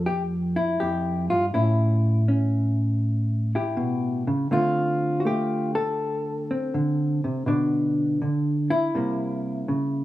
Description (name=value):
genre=solo jazz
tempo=81 BPM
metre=4/4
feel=swing 68% on 8ths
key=A minor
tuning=A4 = 442 Hz
part: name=hollow-body jazz guitar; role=solo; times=0.0-10.0 s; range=F2 to A4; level=-22 LUFS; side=equal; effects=none
room=little or no reverb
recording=rough home demo mix, small room ambience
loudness=-22 LUFS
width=side -15 dB against mid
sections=0.0-10.0 A section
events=none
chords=0.0 F69; 1.6 A7; 4.5 Dm7; 7.5 Bmadd11; 8.9 C7